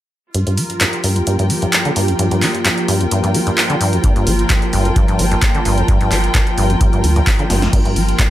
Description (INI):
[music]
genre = acid house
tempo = 130 BPM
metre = 4/4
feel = swing 53% on 16ths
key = G minor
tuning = A4 = 439 Hz
[part]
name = warbly tape-like pad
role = sustained chords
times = 0.7-8.3 s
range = F3 to A5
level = -22 LUFS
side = right 1 dB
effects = chorus, built-in reverb, sidechain pumping
[part]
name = acid bass, saw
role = riff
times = 0.3-8.2 s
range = F2 to G3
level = -18 LUFS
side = equal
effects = lush chorus, sidechain pumping, tape echo
[part]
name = punchy analog drum machine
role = drums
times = 0.3-8.3 s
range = crash cymbal, handclaps, hi-hat, snare drum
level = -19 LUFS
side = equal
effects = overdrive
[part]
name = rich symphonic string section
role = texture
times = 0.3-8.3 s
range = F4 to G5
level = -22 LUFS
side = left 1 dB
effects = sidechain pumping
[part]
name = electronic kick drum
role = drums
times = 4.0-8.3 s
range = none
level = -16 LUFS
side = equal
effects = none
[part]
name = warm sub bass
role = bass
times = 4.3-8.1 s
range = G1 to D2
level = -17 LUFS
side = equal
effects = sidechain pumping
[sound]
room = light reverb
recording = none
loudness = -13 LUFS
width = side -13 dB against mid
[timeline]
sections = 0.3-7.7 A section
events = filter sweep on acid bass 0.3-7.7; drum fill 7.5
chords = 0.3 Gm7